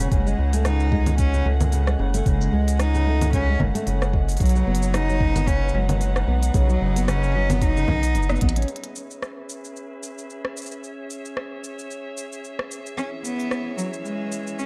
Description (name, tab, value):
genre	folktronica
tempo	112 BPM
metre	4/4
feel	swing 56% on 16ths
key	E major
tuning	A4 = 440 Hz
part	rich string quartet	sustained chords	0.0-14.7 s	E3 to F#5	-36 LUFS	equal	low-pass filter
part	nylon-string guitar	arpeggios	0.0-8.7 s	C#3 to D#4	-31 LUFS	equal	delay
part	round analog bass	bass	0.0-8.7 s	F#1 to C#2	-24 LUFS	equal	none
part	organic electronic drum kit	drums	0.0-14.7 s	congas, hi-hat, rim click, shaker	-32 LUFS	equal	studio reverb
part	clear cello	melody	0.1-8.4, 13.0-14.7 s	F#3 to D#4	-29 LUFS	equal	delay
part	electronic kick drum	drums	0.1-8.5 s	none	-25 LUFS	equal	studio reverb
room	little or no reverb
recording	dark, warm production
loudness	-22 LUFS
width	mono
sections	0.0-8.7 A section; 8.7-14.7 B section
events	band accent 8.3; drum fill 8.4; filter sweep on string quartet 8.7-14.7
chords	0.1 F#madd9; 4.4 Badd9; 8.7 E6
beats	| 0.12 0.65 1.19 1.72 | 2.26 2.79 3.33 3.87 | 4.40 4.94 5.47 6.01 | 6.54 7.08 7.62 8.15 | 8.69 9.22 9.76 10.29 | 10.83 11.37 11.90 12.44 | 12.97 13.51 14.04 14.58